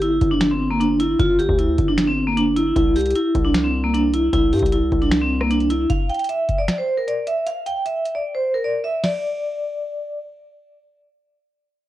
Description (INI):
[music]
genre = hip hop, trap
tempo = 153 BPM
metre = 4/4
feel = half-time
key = unclear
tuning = A4 = 440 Hz
[part]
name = vibraphone with hard mallets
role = melody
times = 0.0-10.2 s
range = Bb3 to G5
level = -19 LUFS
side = equal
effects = cassette tape
[part]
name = distorted 808-style bass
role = bass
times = 0.0-5.9 s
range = G1 to G2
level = -24 LUFS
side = equal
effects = distortion
[part]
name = booming analog drum machine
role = drums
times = 0.0-9.1 s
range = crash cymbal, finger snaps, hi-hat, kick drum, rim click, snare drum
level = -22 LUFS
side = equal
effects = cassette tape
[sound]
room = digital ambience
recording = home recording on cassette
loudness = -17 LUFS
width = side -14 dB against mid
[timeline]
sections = 0.0-5.9 A section; 5.9-9.0 B section; 9.0-11.9 C section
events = drums muted 8.3-9.0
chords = 0.0 G5; 2.8 C5; 5.9 N.C.